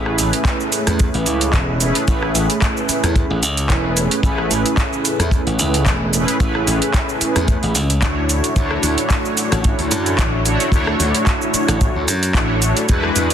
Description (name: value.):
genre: nu-disco, nu disco.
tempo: 111 BPM.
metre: 4/4.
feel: swing 55% on 16ths.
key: A major.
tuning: A4 = 440 Hz.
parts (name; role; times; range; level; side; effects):
mellow synth brass; accompaniment; 0.0-13.3 s; G#3 to C#5; -19 LUFS; right 1 dB; chorus, cassette tape, sidechain pumping, digital delay.
glassy slap bass; bass; 0.0-13.3 s; E1 to F#2; -20 LUFS; equal; none.
pop drum kit; drums; 0.1-13.3 s; handclaps, hi-hat, rim click, shaker; -21 LUFS; right 1 dB; none.
kick drum; drums; 0.4-13.0 s; none; -18 LUFS; equal; none.
room: light reverb, small room ambience.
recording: dense, heavily limited modern master.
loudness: -15 LUFS.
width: side -9 dB against mid.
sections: 0.0-13.3 A section.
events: none.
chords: 0.0 Amaj9; 8.3 Dmaj9.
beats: 0.46 1.00 1.54 | 2.08 2.62 3.16 3.70 | 4.24 4.78 5.32 5.86 | 6.40 6.94 7.48 8.02 | 8.56 9.11 9.65 10.19 | 10.73 11.27 11.81 12.35 | 12.89.